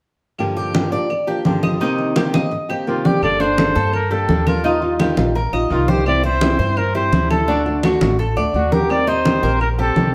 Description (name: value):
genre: latin, Cuban son and guajira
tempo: 169 BPM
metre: 4/4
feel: straight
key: G minor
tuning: A4 = 441 Hz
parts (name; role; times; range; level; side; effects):
- flamenco guitar; accompaniment; 0.4-10.1 s; G2 to A4; -24 LUFS; equal; none
- claves; percussion; 0.4-9.8 s; none; -36 LUFS; equal; none
- congas; percussion; 0.4-10.1 s; none; -23 LUFS; equal; none
- Cuban tres; arpeggios; 0.6-10.1 s; D4 to Eb5; -25 LUFS; equal; none
- breathy trumpet; melody; 2.9-10.1 s; F4 to D5; -23 LUFS; equal; none
- upright bass; bass; 3.2-10.1 s; G1 to G2; -24 LUFS; equal; none
room: wet large studio reverb, RT60 0.8 s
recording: heard from further back in the room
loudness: -18 LUFS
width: mono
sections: 0.4-3.2 A section; 3.2-10.1 B section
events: none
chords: 0.4 Gm7; 1.8 Cm7; 3.2 Gmadd9; 4.6 Ebadd9; 6.1 C; 7.5 D; 8.9 Eb6